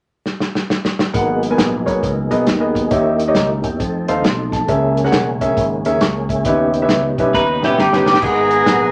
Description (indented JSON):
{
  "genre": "uptempo gospel",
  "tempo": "136 BPM",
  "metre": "4/4",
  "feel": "swing 65% on 8ths",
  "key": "G# minor",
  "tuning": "A4 = 438 Hz",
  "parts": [
    { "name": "warm soul drum kit", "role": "drums", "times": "0.3-8.8 s", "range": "crash cymbal, hi-hat, kick drum, snare drum", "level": "-22 LUFS", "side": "equal", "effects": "none" },
    { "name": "warm upright piano", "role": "accompaniment", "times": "1.1-8.9 s", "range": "G#2 to C#6", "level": "-20 LUFS", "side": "equal", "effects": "none" },
    { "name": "mellow tonewheel organ", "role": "sustained chords", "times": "1.1-8.9 s", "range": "C#3 to A#5", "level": "-24 LUFS", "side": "equal", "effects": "fast rotary speaker, chorus vibrato" },
    { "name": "slap bass with an envelope filter", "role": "bass", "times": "1.1-8.9 s", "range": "E1 to A#2", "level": "-25 LUFS", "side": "equal", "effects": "none" },
    { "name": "twelve-string electric guitar", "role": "second line", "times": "7.3-8.2 s", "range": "G3 to B4", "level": "-21 LUFS", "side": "equal", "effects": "none" },
    { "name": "warm horn section", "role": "melody", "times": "7.8-8.9 s", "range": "B3 to G#4", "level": "-16 LUFS", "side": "equal", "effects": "none" }
  ],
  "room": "wet studio reverb, RT60 0.5 s",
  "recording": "none",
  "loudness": "-16 LUFS",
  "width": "mono",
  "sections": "0.0-1.1 A section; 1.1-8.2 B section",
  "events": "drum fill 0.3-1.1, 7.3-8.2",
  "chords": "0.0 N.C.; 1.1 G#m9; 2.9 D#7b9; 3.8 F7; 4.7 A#m7b5; 6.5 D#7b9b13; 8.2 G#m9"
}